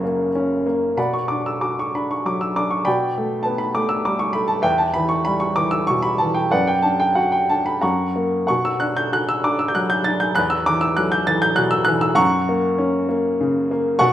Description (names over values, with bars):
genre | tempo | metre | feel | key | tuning
classical, lyrical solo piano | 89-102 BPM | 3/4 | rubato | B minor | A4 = 439 Hz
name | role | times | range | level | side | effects
clear upright piano | solo | 0.0-14.1 s | F#1 to A6 | -17 LUFS | equal | none
room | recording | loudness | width
moderate recital hall reverb, RT60 1.7 s | recorded in a church or concert hall | -17 LUFS | side -12 dB against mid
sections
1.0-14.1 A section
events
none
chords
0.0 F#; 1.0 Bm; 2.9 Gadd9/B; 4.7 Em; 6.5 Bm/F#; 7.8 F#; 8.5 Bm; 10.4 Esus2; 12.2 F#